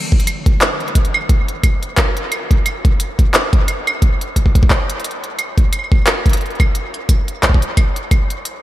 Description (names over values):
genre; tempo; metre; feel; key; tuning
IDM; 88 BPM; 4/4; swing 56% on 16ths; none; none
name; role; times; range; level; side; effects
electronic kick drum; drums; 0.1-8.3 s; none; -13 LUFS; equal; none
organic electronic drum kit; drums; 0.2-8.6 s; claves, handclaps, hi-hat; -19 LUFS; equal; overdrive, tape echo
room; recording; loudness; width
light reverb; none; -13 LUFS; side -15 dB against mid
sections
0.0-8.6 A section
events
none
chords
none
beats
0.61 1.29 1.98 | 2.66 3.34 4.02 4.70 | 5.38 6.07 6.75 7.43 | 8.11